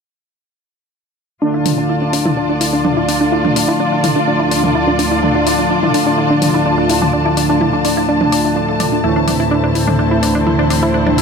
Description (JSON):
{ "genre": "melodic techno", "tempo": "126 BPM", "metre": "4/4", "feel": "straight", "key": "D minor", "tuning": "A4 = 445 Hz", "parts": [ { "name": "lush unison pad", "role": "sustained chords", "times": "1.4-11.2 s", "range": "D2 to C4", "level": "-22 LUFS", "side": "equal", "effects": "chorus" }, { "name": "wide unison pluck", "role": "arpeggios", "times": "1.4-11.2 s", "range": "D4 to D5", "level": "-18 LUFS", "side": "equal", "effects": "ping-pong delay" }, { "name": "analog synth brass", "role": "stabs", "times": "1.4-11.2 s", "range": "D2 to D4", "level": "-18 LUFS", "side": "right 1 dB", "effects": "chorus, ping-pong delay" }, { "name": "dark symphonic string section", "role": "texture", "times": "1.4-11.2 s", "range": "D3 to A5", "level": "-18 LUFS", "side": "left 2 dB", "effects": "none" }, { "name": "house drum kit", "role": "drums", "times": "1.7-11.2 s", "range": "hi-hat, toms", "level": "-21 LUFS", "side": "equal", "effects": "overdrive" } ], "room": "moderate huge ambient reverb, RT60 5.1 s", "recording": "none", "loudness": "-12 LUFS", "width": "side -5 dB against mid", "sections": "1.4-11.2 A section", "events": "filter sweep on synth pluck 1.4-11.2; filter sweep on analog synth pad 1.4-11.2", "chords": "1.4 Dm; 9.0 Am/D", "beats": "| 1.42 1.90 2.37 2.85 | 3.32 3.80 4.28 4.75 | 5.23 5.71 6.18 6.66 | 7.13 7.61 8.09 8.56 | 9.04 9.51 9.99 10.47 | 10.94" }